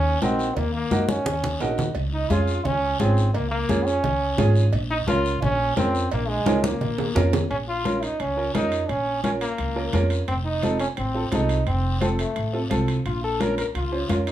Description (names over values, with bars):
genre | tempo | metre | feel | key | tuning
latin, cumbia | 173 BPM | 4/4 | straight | Bb minor, Bb harmonic minor from 7.5 s | A4 = 440 Hz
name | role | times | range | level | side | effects
bright trombone | second line | 0.0-14.3 s | Ab3 to Bb4 | -26 LUFS | equal | none
upright bass | bass | 0.0-14.3 s | F1 to Gb2 | -25 LUFS | equal | none
clear upright piano | accompaniment | 0.2-14.3 s | C4 to C5 | -27 LUFS | right 3 dB | none
congas | percussion | 0.2-14.3 s | none | -27 LUFS | left 2 dB | none
cowbell and timbales | percussion | 0.2-14.3 s | none | -33 LUFS | right 6 dB | none
guiro | percussion | 0.2-14.3 s | none | -38 LUFS | left 4 dB | none
room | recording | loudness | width
moderate studio reverb, RT60 0.6 s | small room ambience | -21 LUFS | side -12 dB against mid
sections
0.0-7.5 A section; 7.5-14.3 B section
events
trombone solo 0.0-7.5, 7.5-14.3; drum fill 0.9-2.0, 6.5-7.5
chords
0.0 Ebm; 2.0 Db; 4.7 Bbm; 10.3 F7; 13.1 Bbm